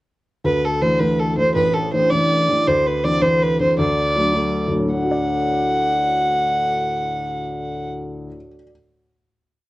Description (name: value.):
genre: celtic folk, Celtic jig.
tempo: 108 BPM (dotted quarters).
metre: 6/8.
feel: straight.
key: D mixolydian.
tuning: A4 = 439 Hz.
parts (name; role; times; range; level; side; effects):
dark upright piano; accompaniment; 0.4-8.7 s; A1 to D5; -21 LUFS; left 1 dB; none.
dark fiddle; melody; 0.5-7.9 s; A4 to F#5; -19 LUFS; right 1 dB; plate reverb.
room: moderate studio reverb, RT60 0.7 s.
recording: worn, warbling old tape, cassette tape, warbly pitch drift.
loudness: -17 LUFS.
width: side -18 dB against mid.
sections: 0.4-4.9 A section; 4.9-7.1 final chord.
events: none.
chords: 0.4 Dsus2; 2.7 Cadd9/D; 3.8 D.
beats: | 0.45 1.00 | 1.56 2.12 | 2.67 3.23 | 3.79 4.34 | 4.90 5.45 | 6.01 6.57.